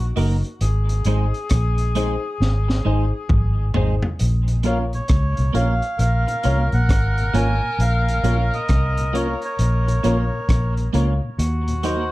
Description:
roots reggae; 67 BPM; 4/4; swing 64% on 16ths; Bb minor; A4 = 441 Hz
warm tenor saxophone; second line; 0.0-12.1 s; Gb4 to Bb4; -30 LUFS; left 3 dB; tape echo
vintage muted fingered electric bass; bass; 0.0-12.1 s; Gb1 to Eb2; -19 LUFS; equal
crunchy breakbeat drum kit; drums; 0.0-12.1 s; hi-hat, kick drum, rim click, snare drum, toms; -23 LUFS; equal
clean electric guitar; accompaniment; 0.2-12.0 s; Ab3 to Bb4; -28 LUFS; right 4 dB; analog chorus, tape echo
warm upright piano; stabs; 0.2-12.1 s; Eb4 to Eb5; -28 LUFS; left 4 dB
mellow tonewheel organ; accompaniment; 4.5-12.0 s; Eb2 to Eb4; -30 LUFS; left 1 dB; slow rotary speaker
melodica; melody; 4.7-12.1 s; C5 to Ab5; -26 LUFS; right 2 dB; tape echo, plate reverb
light reverb; dark, warm production; -18 LUFS; side -18 dB against mid
0.0-12.1 A section
drum fill 2.4-4.2
0.0 Ebm; 0.6 Ab; 4.2 Bbm; 11.4 Ebm
| 0.60 1.50 2.40 3.30 | 4.20 5.10 5.99 6.89 | 7.79 8.69 9.59 10.48 | 11.38

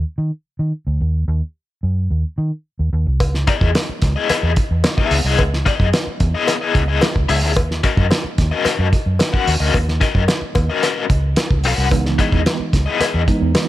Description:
funk; 110 BPM; 4/4; straight; C# dorian; A4 = 440 Hz
vintage muted fingered electric bass; bass; 0.0-13.5 s; B1 to D#3; -18 LUFS; equal
cloth-damped thuddy drum kit; drums; 3.2-13.7 s; hi-hat, kick drum, snare drum; -18 LUFS; equal
cowbell; percussion; 3.2-13.7 s; -26 LUFS; left 2 dB
biting overdriven guitar; accompaniment; 3.5-13.2 s; B3 to F#5; -21 LUFS; left 6 dB; tremolo
mellow tine electric piano; stabs; 11.9-13.7 s; D#3 to D#4; -22 LUFS; right 6 dB; medium stereo tremolo
small room ambience; -15 LUFS; side -15 dB against mid
0.0-3.2 A section; 3.2-13.7 B section
0.0 N.C.; 3.2 C#m9; 7.6 D#m7; 11.9 C#m9
0.45 | 1.00 1.55 2.10 2.65 | 3.20 3.75 4.29 4.84 | 5.39 5.93 6.48 7.02 | 7.57 8.11 8.65 9.20 | 9.74 10.29 10.83 11.37 | 11.92 12.46 13.00 13.55

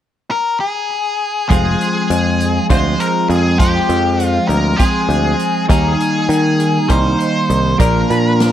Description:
psychedelic rock; 200 BPM (eighths); 7/8; straight; F dorian; A4 = 440 Hz
octave-fuzz lead guitar; melody; 0.3-8.5 s; G4 to C5; -18 LUFS; left 2 dB; wah, distortion, tape echo
twelve-string electric guitar; riff; 1.5-8.5 s; Bb2 to F4; -16 LUFS; right 1 dB; phaser
picked electric bass; bass; 1.5-8.5 s; F1 to Eb3; -16 LUFS; equal
vintage drum kit; drums; 1.5-8.5 s; hi-hat, kick drum, snare drum; -18 LUFS; equal
little or no reverb; dry, close 1970s-style studio recording; -13 LUFS; side -11 dB against mid
0.0-1.5 A section; 1.5-8.5 B section
0.0 N.C.; 1.5 Fm; 5.7 Eb; 7.8 Bb
0.00 0.30 0.60 0.90 1.20 | 1.50 1.80 2.10 2.40 2.70 3.00 3.30 | 3.60 3.90 4.20 4.50 4.80 5.10 5.40 | 5.70 6.00 6.30 6.60 6.90 7.20 7.50 | 7.80 8.10 8.40

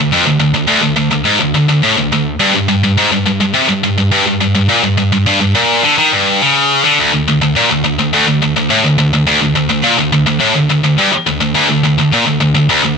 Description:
metal; 105 BPM; 4/4; straight; A4 = 439 Hz
heavy high-gain guitar; solo; 0.0-13.0 s; D2 to Eb3; -10 LUFS; equal; distortion
light reverb, digital ambience; -10 LUFS; side -5 dB against mid
0.0-7.0 A section; 7.0-13.0 B section
| 0.12 0.69 1.27 1.84 | 2.41 2.98 3.56 4.13 | 4.70 5.27 5.84 6.41 | 6.99 7.56 8.13 8.70 | 9.27 9.85 10.42 10.99 | 11.56 12.13 12.71

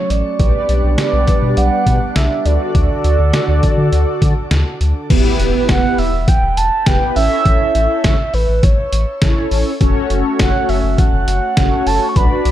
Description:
synth-pop; 102 BPM; 4/4; straight; A4 = 440 Hz
mellow horn-like synth lead; melody; 0.0-12.5 s; B4 to C#6; -19 LUFS; right 3 dB; chorus, digital delay, shimmer reverb
chorused pulse-width pad; sustained chords; 0.0-5.1, 10.0-12.5 s; D3 to A4; -23 LUFS; equal; shimmer reverb
round analog bass; bass; 0.1-12.5 s; E1 to D3; -16 LUFS; equal
trip hop sampler-style drum kit; drums; 0.1-12.5 s; crash cymbal, hi-hat, kick drum, snare drum; -16 LUFS; equal
mellow synth brass; accompaniment; 0.4-12.5 s; B3 to D5; -21 LUFS; equal; chorus, shimmer reverb
impact; sound effects; 5.1-7.5 s; -24 LUFS; left 1 dB
light reverb; dark, warm production; -12 LUFS; side -12 dB against mid
0.0-5.1 A section; 5.1-12.5 B section
impact 5.1-7.5
0.4 G/B; 2.5 D; 5.1 Em; 7.2 A; 9.8 F#m
| 0.40 0.98 1.57 2.16 | 2.75 3.34 3.92 4.51 | 5.10 5.69 6.28 6.87 | 7.45 8.04 8.63 9.22 | 9.81 10.40 10.98 11.57 | 12.16

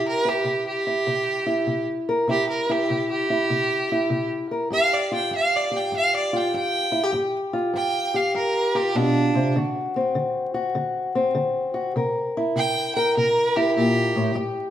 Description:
acoustic country blues, solo or duo; 99 BPM; 4/4; swing 65% on 8ths; A4 = 440 Hz
clear fiddle; melody; 0.0-14.3 s; D4 to G5; -23 LUFS; right 2 dB
fingerpicked old ladder-braced acoustic guitar; accompaniment; 0.0-14.7 s; G2 to Bb4; -23 LUFS; left 1 dB
wet stone room reverb, RT60 1.2 s; band playing live in one room, vinyl crackle; -20 LUFS; side -11 dB against mid
0.0-14.7 A section
fiddle solo 0.0-14.7
0.0 C; 4.7 G7(no3); 9.5 D7; 12.0 C7
0.46 1.06 1.67 | 2.28 2.89 3.50 4.10 | 4.71 5.32 5.92 6.53 | 7.13 7.74 8.34 8.95 | 9.55 10.15 10.76 11.36 | 11.96 12.56 13.16 13.76 | 14.36

